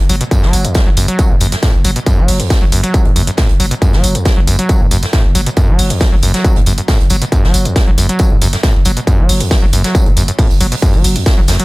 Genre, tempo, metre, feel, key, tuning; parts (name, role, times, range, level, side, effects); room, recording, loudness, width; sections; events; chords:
driving peak-time techno; 137 BPM; 4/4; straight; F# minor; A4 = 440 Hz
growling 808-style bass; bass; 0.0-11.6 s; F#1; -16 LUFS; equal; tube saturation, sidechain pumping, low-pass filter
overdriven acid bass; riff; 0.1-11.6 s; E2 to A3; -17 LUFS; equal; distortion, vintage 12-bit sampler grit, sidechain pumping, tape echo
electronic hi-hat and tambourine; drums; 0.1-11.6 s; -20 LUFS; equal; overdrive, sidechain pumping on hats, sidechain pumping on perc
swinging big-band drum kit; drums; 0.1-11.6 s; hi-hat, snare drum, tambourine; -25 LUFS; right 2 dB; high-pass filter on hats, high-pass filter on snare, high-pass filter on perc, high-pass filter on room
electronic kick drum; drums; 0.3-11.4 s; -12 LUFS; equal; distortion, overdrive
small room ambience; -10 LUFS; side -22 dB against mid
0.0-11.6 A section